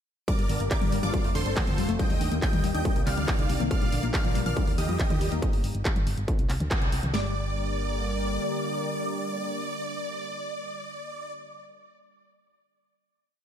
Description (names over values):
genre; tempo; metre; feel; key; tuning
uplifting trance; 140 BPM; 4/4; straight; G minor; A4 = 442 Hz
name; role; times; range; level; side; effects
big supersaw lead; melody; 0.3-11.3 s; F4 to G5; -33 LUFS; right 1 dB; phaser, sidechain pumping, tape echo
wide unison pluck; second line; 0.3-11.5 s; C6 to G6; -40 LUFS; equal; phaser, sidechain pumping, tape echo
lush unison pad; sustained chords; 0.3-11.3 s; C3 to Bb4; -35 LUFS; equal; chorus, sidechain pumping
tight sequenced synth; arpeggios; 0.3-7.3 s; D3 to D4; -33 LUFS; left 4 dB; chorus, sidechain pumping, tape echo
punchy analog drum machine; drums; 0.3-7.1 s; handclaps, hi-hat, toms; -34 LUFS; equal; none
techno drum kit; drums; 0.3-7.2 s; kick drum, snare drum; -27 LUFS; equal; distortion
solid FM bass; bass; 0.4-8.4 s; F1 to F2; -30 LUFS; equal; sidechain pumping
room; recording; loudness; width
light reverb, digital ambience; none; -25 LUFS; side -9 dB against mid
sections
0.3-7.1 drop; 7.1-10.6 final chord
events
drop 0.3-7.1; band accent 6.7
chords
0.3 Gm; 1.1 F; 2.0 Ebadd9; 2.9 Cm; 3.7 Bb; 4.6 Ebadd9; 5.4 N.C.; 7.1 Gm